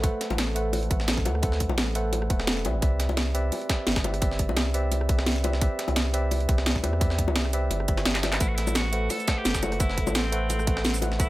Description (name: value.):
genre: liquid drum and bass.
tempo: 172 BPM.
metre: 4/4.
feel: swing 54% on 16ths.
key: A dorian.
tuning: A4 = 440 Hz.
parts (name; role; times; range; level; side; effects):
tine electric piano; accompaniment; 0.0-11.3 s; A3 to F#5; -30 LUFS; right 1 dB; tape echo.
warm sub bass; bass; 0.0-11.3 s; E1 to E2; -27 LUFS; equal; none.
breakbeat sampler-style drum kit; drums; 0.0-11.3 s; hi-hat, snare drum; -32 LUFS; equal; high-pass filter on hats, high-pass filter on snare.
drum and bass drum kit; drums; 0.0-11.3 s; cabasa, handclaps, hi-hat, rim click, snare drum; -29 LUFS; equal; overdrive.
electronic kick drum; drums; 0.0-11.3 s; none; -26 LUFS; equal; overdrive.
bongos; percussion; 0.3-11.1 s; none; -33 LUFS; left 4 dB; none.
edgy tenor saxophone; melody; 8.4-11.3 s; C4 to A4; -32 LUFS; equal; digital delay.
room: light reverb.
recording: none.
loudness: -23 LUFS.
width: side -17 dB against mid.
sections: 0.0-11.3 A section.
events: drum fill 8.1.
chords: 0.0 Am69; 2.6 Cmaj7; 8.4 Am69.